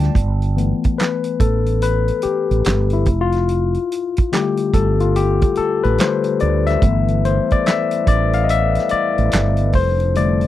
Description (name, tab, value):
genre	R&B, neo-soul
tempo	72 BPM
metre	4/4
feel	swing 63% on 16ths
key	G mixolydian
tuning	A4 = 442 Hz
part	barky tine electric piano	accompaniment	0.0-10.5 s	D3 to F5	-18 LUFS	left 6 dB	overdrive
part	glass harmonica	sustained chords	0.0-0.1, 6.8-10.5 s	G3 to A5	-29 LUFS	right 5 dB	none
part	mellow fretless electric bass	bass	0.0-10.4 s	F1 to D2	-18 LUFS	right 1 dB	none
part	warm soul drum kit	drums	0.0-10.5 s	handclaps, hi-hat, kick drum, snare drum	-19 LUFS	right 1 dB	none
room	little or no reverb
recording	dry, close 1970s-style studio recording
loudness	-15 LUFS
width	side -13 dB against mid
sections	0.2-10.5 A section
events	tine electric piano solo 0.2-10.5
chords	0.2 G69; 3.1 F69; 6.8 G69; 9.7 F69